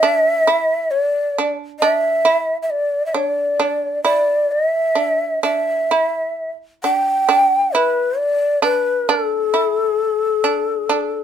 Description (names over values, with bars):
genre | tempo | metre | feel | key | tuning
japanese traditional, Japanese chamber music | 66 BPM | 2/4 | rubato | unclear | A4 = 436 Hz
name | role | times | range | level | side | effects
breathy mellow shakuhachi | melody | 0.0-11.2 s | A4 to G5 | -16 LUFS | left 1 dB | none
shamisen | second line | 0.0-11.2 s | D4 to E4 | -21 LUFS | right 6 dB | none
room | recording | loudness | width
light reverb | minimal, uncompressed stereo recording | -16 LUFS | side -9 dB against mid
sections
0.0-11.2 A section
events
none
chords
none